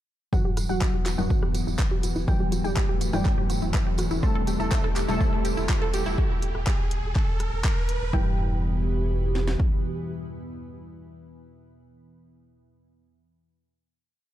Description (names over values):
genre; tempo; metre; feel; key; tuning
melodic techno; 123 BPM; 4/4; straight; E minor; A4 = 440 Hz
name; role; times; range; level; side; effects
resonant sweep polysynth; melody; 0.3-11.1 s; F#3 to A4; -34 LUFS; right 1 dB; chorus, sidechain pumping, ping-pong delay
glassy wavetable pluck; second line; 0.3-11.1 s; F#5 to A5; -38 LUFS; right 1 dB; chorus, sidechain pumping, digital delay
evolving wavetable pad; sustained chords; 0.6-11.1 s; E3 to A4; -38 LUFS; equal; chorus, built-in reverb, sidechain pumping
wide unison pluck; arpeggios; 0.3-8.4 s; E4 to C5; -33 LUFS; right 1 dB; sidechain pumping, digital delay
synth brass stab; stabs; 0.3-11.1 s; G2 to A3; -32 LUFS; left 1 dB; chorus, sidechain pumping, digital delay
analog drone; drone; 0.3-11.1 s; E2 to B3; -40 LUFS; equal; none
techno drum kit; drums; 0.3-9.7 s; kick drum, snare drum; -24 LUFS; equal; none
tambourine; percussion; 0.3-6.2 s; none; -41 LUFS; right 6 dB; none
riser; sound effects; 3.5-8.1 s; none; -38 LUFS; right 2 dB; none
round analog bass; bass; 0.5-9.6 s; E1; -29 LUFS; equal; sidechain pumping
deep house drum kit; drums; 0.6-8.0 s; handclaps, hi-hat, rim click; -34 LUFS; equal; none
room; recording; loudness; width
light reverb, digital ambience; dark, warm production; -23 LUFS; side -13 dB against mid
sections
0.3-8.1 build; 8.1-12.0 final chord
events
build-up 0.3-8.1; filter sweep on synth arpeggio sound 0.3-6.2; filter sweep on analog polysynth 0.3-6.2; filter sweep on synth stab 0.3-6.2; riser 3.5-8.1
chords
0.3 Emadd9; 4.2 Am7/E; 6.2 N.C.; 8.1 Em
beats
| 0.33 0.82 1.30 1.79 | 2.28 2.77 3.25 3.74 | 4.23 4.72 5.21 5.69 | 6.18 6.67 7.16 7.64 | 8.13 8.62 9.11 9.60 | 10.08 10.57 11.06